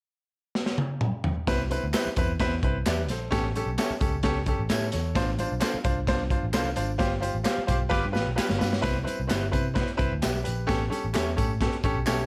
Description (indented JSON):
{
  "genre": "uptempo 1960s-style soul",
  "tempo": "130 BPM",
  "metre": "4/4",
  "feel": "straight",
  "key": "C major",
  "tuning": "A4 = 440 Hz",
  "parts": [
    { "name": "crunchy breakbeat drum kit", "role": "drums", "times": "0.6-12.2 s", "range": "hi-hat, kick drum, snare drum, toms", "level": "-30 LUFS", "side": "equal", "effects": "none" },
    { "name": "clear baby grand piano", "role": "accompaniment", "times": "1.5-12.2 s", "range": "C4 to G5", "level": "-32 LUFS", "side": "equal", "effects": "plate reverb" },
    { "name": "vintage muted picked electric bass", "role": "bass", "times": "1.5-12.3 s", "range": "G1 to C3", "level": "-32 LUFS", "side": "equal", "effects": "none" },
    { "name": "congas", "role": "percussion", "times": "1.5-12.3 s", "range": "none", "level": "-45 LUFS", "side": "equal", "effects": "none" },
    { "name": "tambourine and handclaps", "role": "percussion", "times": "1.5-12.2 s", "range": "none", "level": "-42 LUFS", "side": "equal", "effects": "none" },
    { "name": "electric guitar through a small old amp", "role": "stabs", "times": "1.9-12.2 s", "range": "G4 to F5", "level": "-36 LUFS", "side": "equal", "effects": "plate reverb" },
    { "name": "clear horn section", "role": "second line", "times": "7.0-8.1 s", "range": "F4 to C5", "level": "-37 LUFS", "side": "equal", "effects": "plate reverb" }
  ],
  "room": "light reverb",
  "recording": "none",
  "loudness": "-27 LUFS",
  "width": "mono",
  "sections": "0.0-1.5 A section; 1.5-8.8 B section; 8.8-12.3 C section",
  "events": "drum fill 0.5-1.5, 7.9-8.8; band accent 7.0-8.8",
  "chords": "0.0 N.C.; 1.5 Cmaj7; 3.3 A7; 5.2 Dm7/A; 7.0 G7sus4; 7.9 G7; 8.8 Cmaj7; 10.7 A7"
}